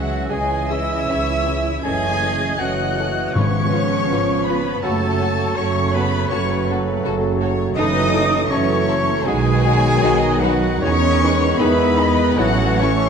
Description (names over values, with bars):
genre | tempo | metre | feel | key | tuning
classical | 80 BPM | 4/4 | uneven beats, rubato | unclear | A4 = 440 Hz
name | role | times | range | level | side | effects
rich chamber violin section | melody | 0.0-13.1 s | F#5 to G#6 | -27 LUFS | left 4 dB | none
clear oboe | second line | 0.0-13.1 s | F#4 to G#5 | -29 LUFS | left 1 dB | none
concert flute | second line | 0.0-13.1 s | F#5 to G#6 | -28 LUFS | left 2 dB | none
mellow clarinet | second line | 0.0-13.1 s | F#4 to C#5 | -30 LUFS | left 1 dB | none
rich studio viola section | accompaniment | 0.0-13.1 s | A4 to E5 | -29 LUFS | right 1 dB | none
warm bassoon | accompaniment | 0.0-13.1 s | D#3 to F#3 | -28 LUFS | right 1 dB | none
clear French horn section | sustained chords | 0.0-13.1 s | G#3 to D#4 | -27 LUFS | left 4 dB | none
mellow trombone section | sustained chords | 0.0-13.1 s | C#3 to A3 | -26 LUFS | right 3 dB | none
bright trumpet section | stabs | 0.0-13.1 s | F#4 to G#5 | -25 LUFS | equal | none
rich chamber cello section | bass | 0.0-13.1 s | F#3 to G#4 | -25 LUFS | right 2 dB | none
rich chamber double bass section | bass | 0.0-13.1 s | F#1 to E2 | -22 LUFS | right 3 dB | none
rich chamber violin section | second line | 0.3-12.9 s | C#4 to B4 | -29 LUFS | left 4 dB | none
timpani | percussion | 3.4-4.4 s | G#2 | -23 LUFS | left 4 dB | none
room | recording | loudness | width
wet concert hall reverb, RT60 1.8 s | dark, warm production | -16 LUFS | side -6 dB against mid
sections
0.0-13.1 A section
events
none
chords
0.0 C#m; 1.8 F#m7; 3.3 C#7/G#; 4.8 F#m; 7.8 F#m7; 9.3 B; 10.8 Emaj7; 12.4 A